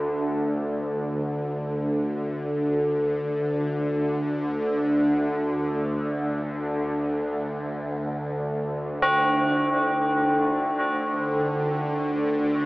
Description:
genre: dark ambient drone.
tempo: free time.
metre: none.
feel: none.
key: unclear.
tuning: A4 = 440 Hz.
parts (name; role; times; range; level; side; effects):
bowed-like drone; drone; 0.0-12.7 s; D2 to D3; -24 LUFS; equal; built-in reverb, phaser.
tubular bells; arpeggios; 9.0-12.7 s; C4; -23 LUFS; equal; diffuse ambient delay.
room: wet huge ambient reverb, RT60 7.9 s.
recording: small speaker sound.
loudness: -23 LUFS.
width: side -20 dB against mid.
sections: 0.0-12.7 A section.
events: filter sweep on synth drone 0.0-12.7.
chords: 0.0 Csus2/D.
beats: free time.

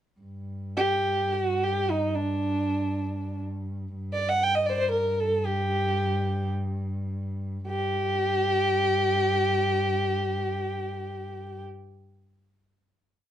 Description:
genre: Arabic maqam ensemble.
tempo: free time.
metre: none.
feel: none.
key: unclear.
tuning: A4 = 440 Hz.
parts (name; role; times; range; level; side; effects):
dark cello; drone; 0.2-11.6 s; G2; -31 LUFS; equal; none.
dark violin; melody; 0.8-11.6 s; D4 to G5; -25 LUFS; equal; none.
room: light reverb.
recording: dark, warm production.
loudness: -24 LUFS.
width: side -10 dB against mid.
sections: 0.2-7.7 free-time section; 7.7-11.4 final note.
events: none.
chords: none.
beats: free time.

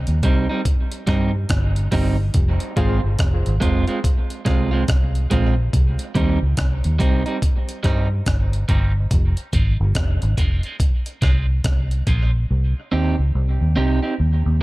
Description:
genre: dub reggae.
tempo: 71 BPM.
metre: 4/4.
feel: swing 62% on 16ths.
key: F minor.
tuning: A4 = 440 Hz.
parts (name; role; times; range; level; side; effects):
vintage muted fingered electric bass; bass; 0.0-14.6 s; F1 to G2; -19 LUFS; equal; none.
breakbeat sampler-style drum kit; drums; 0.1-12.3 s; hi-hat, kick drum, rim click; -20 LUFS; equal; none.
electric guitar at the edge of break-up; accompaniment; 0.2-14.1 s; G3 to G4; -25 LUFS; right 3 dB; high-pass filter, dub echo.
barky reed electric piano; stabs; 2.8-3.0 s; F4 to C5; -32 LUFS; left 3 dB; overdrive, medium tremolo, dub echo.
room: little or no reverb.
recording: dark, warm production.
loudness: -17 LUFS.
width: side -19 dB against mid.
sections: 0.0-14.6 A section.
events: break 0.0-2.3; filter sweep on clean electric guitar 5.7-12.5; part muted 12.5-14.6.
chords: 0.0 Cm; 2.3 Fm; 5.7 Cm; 9.1 Fm; 12.5 Cm.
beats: 0.65 1.50 | 2.34 3.19 4.03 4.88 | 5.73 6.57 7.42 8.26 | 9.11 9.96 10.80 11.65 | 12.49 13.34 14.19.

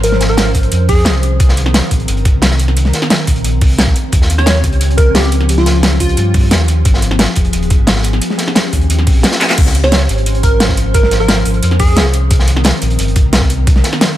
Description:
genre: liquid drum and bass.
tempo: 176 BPM.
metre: 4/4.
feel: straight.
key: Db lydian.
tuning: A4 = 440 Hz.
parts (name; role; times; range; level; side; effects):
plucky unison lead; melody; 0.0-1.1, 4.4-6.3, 9.8-12.1 s; F4 to Db5; -18 LUFS; right 1 dB; cassette tape, dub echo.
glassy FM pad; sustained chords; 0.0-14.2 s; Eb3 to C5; -20 LUFS; left 1 dB; ensemble chorus, built-in reverb, sidechain pumping.
sub bass with octave; bass; 0.0-13.8 s; Eb1 to G2; -14 LUFS; equal; none.
crunchy breakbeat drum kit; drums; 0.0-14.1 s; hi-hat, snare drum; -19 LUFS; equal; high-pass filter on hats, high-pass filter on snare, high-pass filter on room.
pop drum kit; drums; 0.0-14.1 s; crash cymbal, handclaps, hi-hat, snare drum; -16 LUFS; equal; overdrive.
electronic kick drum; drums; 0.5-13.7 s; none; -12 LUFS; equal; none.
room: digital ambience.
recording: none.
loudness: -9 LUFS.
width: side -13 dB against mid.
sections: 0.0-9.6 A section; 9.6-14.2 A section.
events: drop 0.0-9.6, 9.6-14.2; drum fill 9.4.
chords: 0.0 Dbmaj7; 1.2 Cm7; 4.0 Eb13; 6.9 Abm6; 8.2 Eb13; 9.6 Dbmaj7; 12.1 Cm7.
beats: | 0.04 0.38 0.72 1.06 | 1.40 1.74 2.08 2.42 | 2.76 3.10 3.44 3.79 | 4.13 4.47 4.81 5.15 | 5.49 5.83 6.17 6.51 | 6.85 7.20 7.54 7.88 | 8.22 8.56 8.90 9.24 | 9.58 9.92 10.26 10.60 | 10.95 11.29 11.63 11.97 | 12.31 12.65 12.99 13.33 | 13.67 14.01.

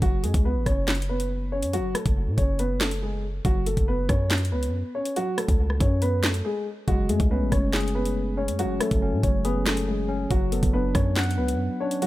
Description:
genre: hip hop, drill.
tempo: 140 BPM.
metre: 4/4.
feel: half-time.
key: F# minor.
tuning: A4 = 439 Hz.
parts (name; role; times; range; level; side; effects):
dark concert grand piano; melody; 0.0-12.1 s; F#3 to C#5; -28 LUFS; equal; low-pass filter, digital delay.
hard-hitting 808-style bass; bass; 0.0-11.7 s; F#1 to A2; -26 LUFS; equal; none.
drill drum kit; drums; 0.0-12.1 s; handclaps, hi-hat, kick drum, rim click, snare drum; -25 LUFS; equal; none.
tine electric piano; accompaniment; 6.9-12.1 s; F#3 to F#5; -28 LUFS; left 1 dB; medium stereo tremolo, low-pass filter.
room: little or no reverb.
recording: none.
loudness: -22 LUFS.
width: side -16 dB against mid.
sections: 0.0-12.1 A section.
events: break 6.4-6.9.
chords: 0.0 F#madd9; 10.3 Bm/F#.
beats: | 0.02 0.45 0.88 1.31 | 1.74 2.16 2.59 3.02 | 3.45 3.88 4.31 4.74 | 5.16 5.59 6.02 6.45 | 6.88 7.31 7.74 8.16 | 8.59 9.02 9.45 9.88 | 10.31 10.73 11.16 11.59 | 12.02.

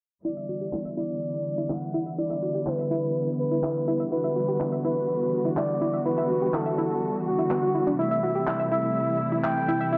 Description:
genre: progressive house.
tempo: 124 BPM.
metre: 4/4.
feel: straight.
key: E minor.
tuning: A4 = 440 Hz.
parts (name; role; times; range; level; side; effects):
expressive synth lead; melody; 0.2-10.0 s; F#4 to G5; -30 LUFS; equal; chorus, cassette tape, delay.
rich studio string section; sustained chords; 0.2-10.0 s; C3 to F#4; -31 LUFS; equal; low-pass filter.
analog pluck; arpeggios; 0.2-10.0 s; B3 to E5; -32 LUFS; equal; chorus, delay.
electronic handclaps; drums; 0.7-9.5 s; none; -39 LUFS; equal; low-pass filter on snare, low-pass filter on room.
room: light reverb.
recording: low-pass filter, nothing above 7.6 kHz.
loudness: -26 LUFS.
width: mono.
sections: 0.2-10.0 A section.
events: filter sweep on drum 0.2-10.0; filter sweep on synth pluck 0.2-10.0; filter sweep on string section 0.2-10.0; filter sweep 0.2-10.0.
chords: 0.2 Em7; 8.0 Am7.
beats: | 0.25 0.73 1.22 1.70 | 2.19 2.67 3.15 3.64 | 4.12 4.60 5.09 5.57 | 6.06 6.54 7.02 7.51 | 7.99 8.47 8.96 9.44 | 9.93.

